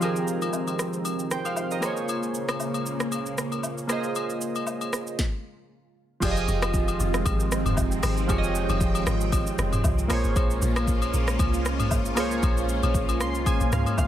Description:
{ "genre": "amapiano", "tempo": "116 BPM", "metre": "4/4", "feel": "swing 55% on 16ths", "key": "F minor", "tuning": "A4 = 440 Hz", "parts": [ { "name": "warm analog keys", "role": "accompaniment", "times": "0.0-14.1 s", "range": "F3 to C6", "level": "-28 LUFS", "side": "right 2 dB", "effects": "chorus" }, { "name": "lush unison pad", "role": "sustained chords", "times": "0.0-14.1 s", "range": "Db3 to G5", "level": "-32 LUFS", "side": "equal", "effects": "chorus, phaser" }, { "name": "afro-pop drum kit", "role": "drums", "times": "0.0-14.1 s", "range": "crash cymbal, hi-hat, kick drum, rim click, shaker, snare drum, toms", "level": "-28 LUFS", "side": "equal", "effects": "none" }, { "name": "agogo bells and woodblock", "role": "percussion", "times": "0.0-14.1 s", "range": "none", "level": "-34 LUFS", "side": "left 7 dB", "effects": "none" }, { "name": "deep log drum bass", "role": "bass", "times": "6.2-14.1 s", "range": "F1 to Db2", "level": "-27 LUFS", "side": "equal", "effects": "none" } ], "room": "digital ambience", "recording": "none", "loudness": "-23 LUFS", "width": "side -11 dB against mid", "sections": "0.0-6.2 A section; 6.2-14.1 B section", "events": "stop 5.2-6.2; drop 6.2-14.1; synth keys fill 12.9-14.1", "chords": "0.0 Fm7; 1.8 Bbm7; 6.2 Fm7; 10.1 Bbm7" }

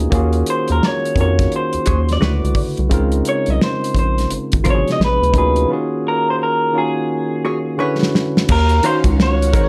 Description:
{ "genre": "R&B, neo-soul", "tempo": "86 BPM", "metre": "4/4", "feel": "swing 63% on 16ths", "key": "Eb dorian", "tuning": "A4 = 440 Hz", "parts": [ { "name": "barky tine electric piano", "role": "accompaniment", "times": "0.0-9.7 s", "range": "Bb2 to F5", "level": "-23 LUFS", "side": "equal", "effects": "plate reverb" }, { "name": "rubbery square bass", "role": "bass", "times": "0.0-9.7 s", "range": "Ab1 to F2", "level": "-19 LUFS", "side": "equal", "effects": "none" }, { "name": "warm soul drum kit", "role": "drums", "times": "0.1-9.7 s", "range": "crash cymbal, hi-hat, kick drum, snare drum", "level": "-21 LUFS", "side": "equal", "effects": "none" }, { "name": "electric guitar through a small old amp", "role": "melody", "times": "0.5-9.7 s", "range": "Ab4 to Eb5", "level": "-22 LUFS", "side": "equal", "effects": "slapback echo, plate reverb" }, { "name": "vintage hollow-body jazz guitar", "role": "second line", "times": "1.9-9.7 s", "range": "F4 to Gb5", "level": "-27 LUFS", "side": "equal", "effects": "plate reverb" }, { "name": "phased string machine", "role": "sustained chords", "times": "8.5-9.7 s", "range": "Eb3 to F5", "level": "-30 LUFS", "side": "equal", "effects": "ensemble chorus, phaser" } ], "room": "light reverb", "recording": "none", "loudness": "-17 LUFS", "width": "mono", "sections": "0.0-8.5 A section; 8.5-9.7 B section", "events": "drum fill 7.1-8.5", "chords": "0.1 Ebm11; 2.2 Dmaj13; 2.9 Dbmaj13; 5.0 Bb7b9; 5.7 Ebm11; 7.8 Dmaj13; 8.5 Ebm9" }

